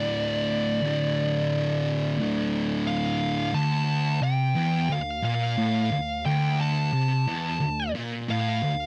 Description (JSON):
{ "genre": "metal", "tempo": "88 BPM", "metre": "4/4", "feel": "straight", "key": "D minor", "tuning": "A4 = 441 Hz", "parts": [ { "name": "fuzz lead guitar", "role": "melody", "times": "0.0-8.9 s", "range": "D5 to A5", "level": "-31 LUFS", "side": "equal", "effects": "distortion, slapback echo" }, { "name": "thick fuzz guitar", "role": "riff", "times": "0.0-8.9 s", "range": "D2 to D3", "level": "-27 LUFS", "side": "equal", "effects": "distortion" } ], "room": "light reverb", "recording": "dry, close 1970s-style studio recording", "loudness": "-26 LUFS", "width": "mono", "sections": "0.0-3.5 A section; 3.5-8.9 B section", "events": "none", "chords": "0.0 D5; 3.5 Dm", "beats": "0.15 | 0.83 1.51 2.19 2.86 | 3.54 4.22 4.90 5.57 | 6.25 6.93 7.61 8.29" }